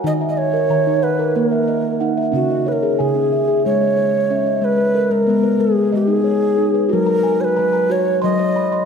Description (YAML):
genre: world meditative, meditative tuned percussion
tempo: 183 BPM (eighths)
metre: 7/8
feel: straight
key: G# minor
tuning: A4 = 438 Hz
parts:
  - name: steel tongue drum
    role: arpeggios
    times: 0.0-8.9 s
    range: C#3 to B#5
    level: -18 LUFS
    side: equal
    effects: ping-pong delay
  - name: breathy mellow Native American-style cedar flute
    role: melody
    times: 0.1-8.9 s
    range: F#4 to D#5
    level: -18 LUFS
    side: equal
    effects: ping-pong delay
room: wet scoring stage reverb, RT60 2.0 s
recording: none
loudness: -15 LUFS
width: side -6 dB against mid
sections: 0.0-4.6 A section; 4.6-8.9 B section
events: none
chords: 0.0 D#m; 2.3 C#m; 4.6 G#m; 6.9 F#